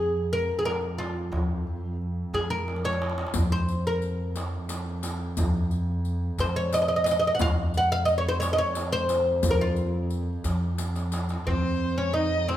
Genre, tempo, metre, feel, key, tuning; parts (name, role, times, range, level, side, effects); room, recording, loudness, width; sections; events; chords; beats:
Arabic maqam ensemble; 89 BPM; 3/4; straight; A4 = 440 Hz
oud; melody; 0.0-12.6 s; C4 to Gb5; -26 LUFS; equal
upright bass; bass; 0.0-12.6 s; F2; -29 LUFS; equal
muted double bass; drone; 0.0-12.6 s; F2; -33 LUFS; right 1 dB
darbuka; percussion; 0.7-12.6 s; -32 LUFS; equal
riq; percussion; 3.3-11.4 s; -37 LUFS; left 6 dB
dark violin; second line; 11.5-12.6 s; C5 to Eb5; -29 LUFS; left 3 dB
moderate recital hall reverb, RT60 1.5 s; recorded in a church or concert hall; -24 LUFS; side -12 dB against mid
0.0-11.5 A section; 11.5-12.6 B section
drum fill 2.7-3.3, 10.8-11.5
0.64 | 1.32 1.99 2.67 | 3.35 4.02 4.70 | 5.38 6.05 6.73 | 7.41 8.08 8.76 | 9.44 10.11 10.79 | 11.47 12.14